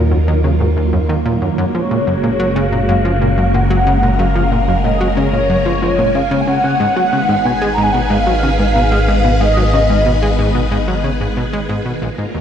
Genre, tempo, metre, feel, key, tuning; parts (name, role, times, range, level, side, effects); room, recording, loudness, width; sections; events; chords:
ambient, sequencer-driven space music; 92 BPM; 4/4; straight; A4 = 440 Hz
mellow horn-like synth lead; melody; 0.0-10.7 s; Bb4 to Bb5; -18 LUFS; equal; ensemble chorus, ping-pong delay
phased string machine; sustained chords; 0.0-12.4 s; Db3 to Cb5; -19 LUFS; equal; ensemble chorus, phaser
plucky analog bass; riff; 0.0-12.4 s; Bb1 to Ab3; -18 LUFS; equal; ping-pong delay
analog drone; bass; 0.0-12.4 s; Gb1 to Eb2; -18 LUFS; equal; chorus
moderate plate reverb, RT60 3.6 s; echo-heavy mix; -12 LUFS; side -9 dB against mid
0.0-12.4 A section
fade-out 10.3-12.4
0.0 Ebm; 1.6 Gbadd9; 6.8 Abm